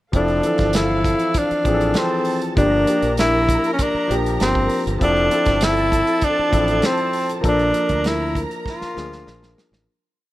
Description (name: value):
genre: lush 1970s-style soul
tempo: 98 BPM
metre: 4/4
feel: straight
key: F major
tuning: A4 = 440 Hz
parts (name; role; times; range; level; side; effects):
- warm studio violin section; second line; 0.1-9.8 s; A4 to Bb5; -29 LUFS; right 3 dB; none
- warm concert grand piano; accompaniment; 0.1-9.9 s; E3 to Bb4; -23 LUFS; left 2 dB; none
- modern bright fingered electric bass; bass; 0.1-9.9 s; F1 to D2; -24 LUFS; right 1 dB; none
- warm soul drum kit; drums; 0.1-9.9 s; hi-hat, kick drum, snare drum; -23 LUFS; right 1 dB; none
- breathy tenor saxophone; melody; 0.2-9.5 s; C4 to F4; -19 LUFS; equal; none
room: light reverb, studio ambience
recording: rough home demo mix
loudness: -16 LUFS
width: side -16 dB against mid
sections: 0.1-9.9 A section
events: fade-out 7.4-9.9; drum fill 8.7-9.9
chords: 0.1 Fmaj7; 2.6 Gm7; 5.0 Fmaj7; 7.4 Bbmaj7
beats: | 0.13 0.74 1.35 1.96 | 2.57 3.18 3.79 4.39 | 5.00 5.61 6.22 6.83 | 7.44 8.05 8.66 9.27